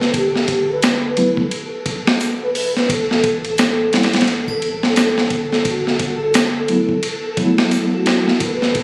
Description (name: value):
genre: trip hop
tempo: 87 BPM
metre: 4/4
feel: swing 59% on 16ths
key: unclear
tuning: A4 = 440 Hz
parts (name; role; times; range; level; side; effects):
- pure breathy sine lead; melody; 0.0-8.8 s; F#4 to B4; -24 LUFS; equal; ensemble chorus, tape echo
- soft dub sub bass; bass; 0.0-8.8 s; D1 to A1; -35 LUFS; equal; none
- boom bap sampler-style drum kit; drums; 0.0-8.8 s; hi-hat, kick drum, ride cymbal, snare drum; -20 LUFS; equal; none
- flickering grainy texture; texture; 0.0-8.8 s; A4; -31 LUFS; equal; built-in reverb
- egg shaker and triangle; percussion; 0.8-7.9 s; none; -37 LUFS; equal; none
- mellow tine electric piano; accompaniment; 1.2-8.4 s; F#3 to E4; -22 LUFS; equal; tremolo, tape echo
room: little or no reverb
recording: recorded on a phone in the room, studio reverb, vinyl crackle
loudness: -17 LUFS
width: mono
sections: 0.0-8.8 A section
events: none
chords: 0.1 Gadd9; 2.9 A7(no3); 5.7 Gmaj13